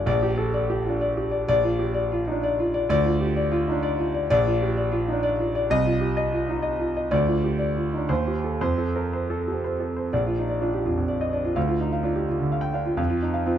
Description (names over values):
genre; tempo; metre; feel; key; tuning
classical, virtuoso piano study; 127 BPM; 3/4; rubato; Bb major from 4.3 s; A4 = 435 Hz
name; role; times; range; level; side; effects
clear concert grand piano; solo; 0.0-13.6 s; Bb1 to G5; -22 LUFS; equal; none
room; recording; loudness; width
light reverb; dark, warm production; -22 LUFS; side -10 dB against mid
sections
0.0-10.1 A section; 10.1-13.6 B section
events
none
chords
0.1 Gm/Bb; 1.5 Bb; 2.9 Dmadd11; 4.3 Bb; 5.7 F5/C; 7.1 Dmadd11; 8.1 Cm/Eb; 8.6 F; 10.1 Bb; 11.6 Dmadd11; 13.0 F5